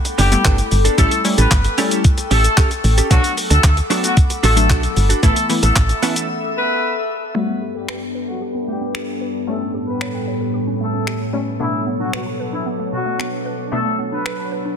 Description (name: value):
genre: dance-pop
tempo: 113 BPM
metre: 4/4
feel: straight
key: unclear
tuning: A4 = 440 Hz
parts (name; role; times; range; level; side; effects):
- analog pluck; accompaniment; 0.0-14.8 s; E3 to E4; -23 LUFS; left 3 dB; chorus, sidechain pumping, low-pass filter
- glassy FM pad; sustained chords; 0.0-14.8 s; G2 to E6; -24 LUFS; left 2 dB; ensemble chorus, built-in reverb, sidechain pumping, low-pass filter
- direct-recorded clean electric guitar; riff; 0.0-6.3 s; B3 to A4; -23 LUFS; right 9 dB; analog chorus
- clean 12-bit digital drum machine; drums; 0.1-14.4 s; finger snaps, handclaps, hi-hat, kick drum, shaker; -18 LUFS; equal; soft clipping on snare
- warm horn section; melody; 0.2-14.5 s; E3 to B4; -23 LUFS; left 2 dB; sidechain pumping, low-pass filter, digital delay
- solid FM bass; bass; 0.2-5.9 s; F#1 to D2; -15 LUFS; equal; sidechain pumping
- mallet-like synth pluck; arpeggios; 7.4-14.8 s; B2 to A5; -29 LUFS; right 5 dB; chorus, sidechain pumping, low-pass filter, digital delay
room: digital ambience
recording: dense, heavily limited modern master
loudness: -15 LUFS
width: side -7 dB against mid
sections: 0.0-7.4 A section; 7.4-14.8 B section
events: drop 0.0-7.4; break 6.3-7.4; filter sweep 7.4-14.8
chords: 0.0 Gadd9; 1.0 A7; 3.1 Bm7; 5.2 Asus2; 7.4 Gadd9; 9.5 A7; 11.6 Bm7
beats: 0.45 | 0.98 1.51 2.04 2.58 | 3.11 3.64 4.17 4.70 | 5.23 5.76 6.29 6.82 | 7.36 7.89 8.42 8.95 | 9.48 10.01 10.54 11.07 | 11.60 12.13 12.66 13.20 | 13.73 14.26